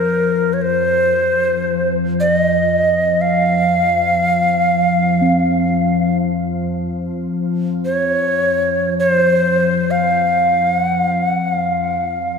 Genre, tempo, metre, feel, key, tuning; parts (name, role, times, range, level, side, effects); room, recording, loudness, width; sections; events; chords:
world meditative, free-time meditation music; free time; A4 = 440 Hz
mellow Native American-style cedar flute; melody; 0.0-12.4 s; Bb4 to F5; -15 LUFS; equal; analog delay
glassy FM pad; drone; 0.0-12.4 s; F2 to F3; -20 LUFS; left 2 dB; ensemble chorus, built-in reverb
bronze singing bowl; texture; 5.2-12.4 s; C4; -25 LUFS; right 3 dB
wet plate reverb, RT60 2.8 s; dreamy mix soaked in reverb; -14 LUFS; side -6 dB against mid
0.0-12.4 A section